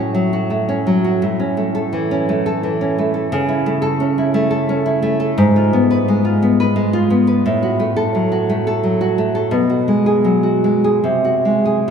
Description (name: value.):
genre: romantic piece for solo classical guitar.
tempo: 86 BPM.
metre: 3/4.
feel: rubato.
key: unclear.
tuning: A4 = 440 Hz.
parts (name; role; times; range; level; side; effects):
nylon-string guitar; solo; 0.0-11.9 s; G#2 to B4; -14 LUFS; equal; none.
room: wet cathedral reverb, RT60 4.6 s.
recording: in a vast, echoing space.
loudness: -14 LUFS.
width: side -7 dB against mid.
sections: 0.0-11.9 A section.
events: none.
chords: 0.0 F#m/A; 1.2 A; 3.3 A/C#; 5.4 G#m6; 7.5 F#m/A; 9.5 G#m7/B; 11.0 G#7/B#.